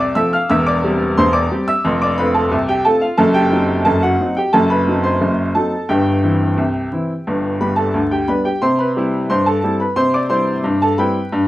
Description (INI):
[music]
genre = ragtime piano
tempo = 89 BPM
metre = 2/4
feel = straight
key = C major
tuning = A4 = 438 Hz
[part]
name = clear upright piano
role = solo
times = 0.0-11.5 s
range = E1 to F6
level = -14 LUFS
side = equal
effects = none
[sound]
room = light reverb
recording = dark, warm production, vinyl crackle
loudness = -14 LUFS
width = side -16 dB against mid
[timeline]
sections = 0.0-8.6 A section; 8.6-11.5 A section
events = none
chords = 0.5 C/E; 1.8 F; 3.2 F#dim7; 5.9 C/G; 7.3 G; 8.6 C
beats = | 0.50 1.17 | 1.84 2.51 | 3.19 3.86 | 4.53 5.21 | 5.89 6.57 | 7.26 7.94 | 8.62 9.29 | 9.97 10.64 | 11.31